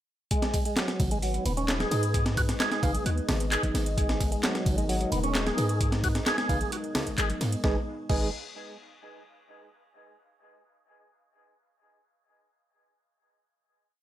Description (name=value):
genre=breakbeat, breaks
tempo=131 BPM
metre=4/4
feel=straight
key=G# minor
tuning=A4 = 441 Hz
part: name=dark analog pad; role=sustained chords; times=1.0-7.9 s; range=G#3 to D#5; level=-35 LUFS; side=equal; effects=chorus, sidechain pumping
part: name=percussive tonewheel organ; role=riff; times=0.3-8.3 s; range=F#3 to G#4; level=-32 LUFS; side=right 1 dB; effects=overdrive, chorus vibrato, slow rotary speaker, dub echo
part: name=breakbeat sampler-style drum kit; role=drums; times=0.3-8.2 s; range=crash cymbal, hi-hat, kick drum, snare drum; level=-29 LUFS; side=equal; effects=none
part: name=house drum kit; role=drums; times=0.3-7.6 s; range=handclaps, hi-hat, ride cymbal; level=-36 LUFS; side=right 1 dB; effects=none
part: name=warm 808-style bass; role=bass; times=1.0-8.3 s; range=D#1 to G#2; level=-29 LUFS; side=equal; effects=none
part: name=congas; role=percussion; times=1.0-7.4 s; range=none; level=-38 LUFS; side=right 2 dB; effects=none
part: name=mellow tine electric piano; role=stabs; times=1.9-8.3 s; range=D#4 to E#5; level=-37 LUFS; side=right 3 dB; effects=medium stereo tremolo, vintage 12-bit sampler grit, dub echo
room=digital ambience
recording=none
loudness=-25 LUFS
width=side -12 dB against mid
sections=0.3-7.6 drop; 7.6-9.5 final chord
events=drop 0.3-7.6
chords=0.3 G#m